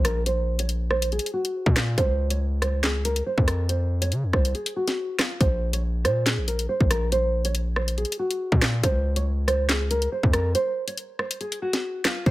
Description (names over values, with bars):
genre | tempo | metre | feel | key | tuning
hip hop, drill | 140 BPM | 4/4 | half-time | Bb minor | A4 = 441 Hz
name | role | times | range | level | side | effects
hard-hitting 808-style bass | bass | 0.0-12.3 s | Bb1 to Db3 | -24 LUFS | equal | none
drill drum kit | drums | 0.0-12.3 s | handclaps, hi-hat, kick drum, rim click, snare drum | -24 LUFS | equal | none
nylon-string guitar | melody | 0.1-12.3 s | F4 to Db5 | -27 LUFS | right 1 dB | low-pass filter
room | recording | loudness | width
little or no reverb | none | -22 LUFS | side -17 dB against mid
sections
0.0-12.3 A section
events
filter sweep on nylon-string guitar 0.0-12.3; break 4.5-5.4, 10.5-12.3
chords
0.0 Bbsus2; 2.0 Db; 5.4 Bbsus2; 8.8 N.C.